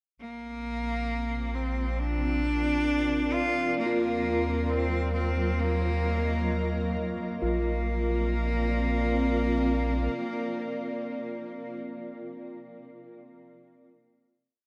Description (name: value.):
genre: ambient.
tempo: free time.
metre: none.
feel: none.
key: Bb major.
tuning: A4 = 440 Hz.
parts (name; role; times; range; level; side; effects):
bright cello; melody; 0.2-11.8 s; Bb3 to F4; -33 LUFS; equal; diffuse ambient delay.
granular cloud pad; sustained chords; 1.2-11.8 s; Gb3 to Eb5; -34 LUFS; equal; built-in reverb.
round analog bass; bass; 0.2-10.1 s; Bb1 to Eb2; -33 LUFS; equal; none.
organ-like drone; drone; 5.5-11.8 s; Bb3 to Bb4; -41 LUFS; equal; ensemble chorus, built-in reverb.
muted felt-like synth keys; arpeggios; 3.9-13.5 s; F4; -41 LUFS; equal; none.
room: wet cathedral reverb, RT60 6.6 s.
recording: in a vast, echoing space.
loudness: -28 LUFS.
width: mono.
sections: 0.2-7.4 A section; 7.4-11.0 final chord.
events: none.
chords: 0.2 Bb; 3.8 Ebmadd9; 7.4 Bb.